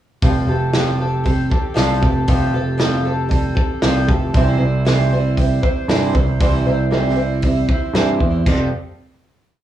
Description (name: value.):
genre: folk rock and heartland rock.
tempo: 117 BPM.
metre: 4/4.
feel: straight.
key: F major.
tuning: A4 = 440 Hz.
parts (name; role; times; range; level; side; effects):
picked twelve-string acoustic guitar; accompaniment; 0.2-8.7 s; C3 to C5; -19 LUFS; equal; none.
picked electric bass; bass; 0.2-8.7 s; F1 to G2; -19 LUFS; right 1 dB; none.
natural country drum kit; drums; 0.2-8.6 s; crash cymbal, hi-hat, kick drum, snare drum; -19 LUFS; equal; none.
room: light reverb.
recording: worn, warbling old tape, cassette tape, warbly pitch drift, small room ambience.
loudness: -15 LUFS.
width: side -12 dB against mid.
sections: 0.2-8.5 verse; 8.5-9.6 final chord.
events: none.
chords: 0.2 Fadd9; 4.3 C; 8.5 Fadd9.